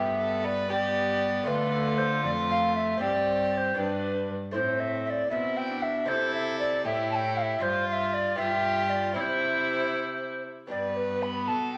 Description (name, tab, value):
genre	classical, renaissance-style consort dance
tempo	78 BPM (dotted quarters)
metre	6/8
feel	straight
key	unclear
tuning	A4 = 440 Hz
part	mellow tenor recorder	melody	0.0-11.8 s	B4 to B5	-30 LUFS	equal	none
part	rich violin	second line	0.0-11.8 s	D4 to B4	-34 LUFS	equal	none
part	lute	accompaniment	0.0-11.8 s	F2 to C5	-42 LUFS	equal	none
part	warm viola	accompaniment	0.0-11.8 s	A3 to F4	-37 LUFS	equal	none
part	rich cello	bass	0.0-11.8 s	F2 to D3	-37 LUFS	equal	none
room	wet stone room reverb, RT60 1.3 s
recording	none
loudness	-28 LUFS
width	mono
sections	0.0-10.7 A section; 10.7-11.8 B section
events	none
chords	0.0 G; 1.5 Dm; 3.0 Gsus4; 3.8 G; 4.6 Am; 6.1 C; 7.6 G5; 8.4 G7; 9.2 C; 10.7 G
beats	0.70 | 1.47 2.24 | 3.00 3.77 | 4.55 5.32 | 6.08 6.85 | 7.62 8.38 | 9.16 9.93 | 10.71 11.48